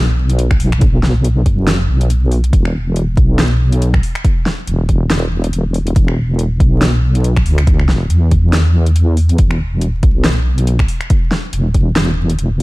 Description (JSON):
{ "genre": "deep dubstep", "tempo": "140 BPM", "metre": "4/4", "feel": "swing 57% on 16ths, half-time", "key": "unclear", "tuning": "A4 = 438 Hz", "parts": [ { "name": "deep soft wobble bass", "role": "bass", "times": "0.0-12.6 s", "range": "E1 to E2", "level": "-13 LUFS", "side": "equal", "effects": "chorus" }, { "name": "deep house drum kit", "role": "drums", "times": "0.3-12.6 s", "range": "finger snaps, hi-hat, snare drum", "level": "-20 LUFS", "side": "equal", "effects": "overdrive" }, { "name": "electronic kick drum", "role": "drums", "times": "0.5-11.8 s", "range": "none", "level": "-14 LUFS", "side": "equal", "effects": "overdrive" } ], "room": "digital ambience", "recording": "dark, warm production, vinyl crackle", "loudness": "-11 LUFS", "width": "side -21 dB against mid", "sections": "0.0-12.6 A section", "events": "none", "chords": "none" }